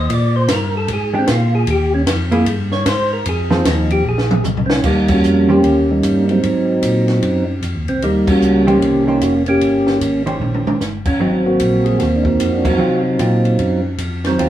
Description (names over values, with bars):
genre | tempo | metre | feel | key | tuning
soul jazz organ trio | 151 BPM | 4/4 | swing 64% on 8ths | unclear | A4 = 441 Hz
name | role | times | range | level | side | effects
percussive tonewheel organ | melody | 0.0-14.5 s | Eb3 to Eb5 | -15 LUFS | right 1 dB | slow rotary speaker
tonewheel organ | bass | 0.0-14.5 s | F1 to C3 | -20 LUFS | equal | slow rotary speaker
compact cocktail drum kit | drums | 0.1-14.5 s | crash cymbal, hi-hat, kick drum, ride cymbal, snare drum, toms | -22 LUFS | equal | none
hollow-body jazz guitar | accompaniment | 1.1-5.6, 8.7-14.5 s | Eb3 to C5 | -20 LUFS | right 1 dB | none
room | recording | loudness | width
wet club reverb, RT60 0.7 s | heard from further back in the room, small room ambience | -13 LUFS | side -12 dB against mid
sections
0.0-4.8 A section; 4.8-14.5 B section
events
tonewheel organ solo 0.0-4.8; drum fill 4.0-4.8, 10.4-10.8; band accent 5.0, 8.2, 12.6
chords
0.1 Bb6; 1.7 Ebsus2; 2.5 Bbm13/G; 3.3 Fm7; 4.0 Bbsus2; 4.8 Eb9; 6.4 Ab13; 8.0 Eb13; 11.2 Ab13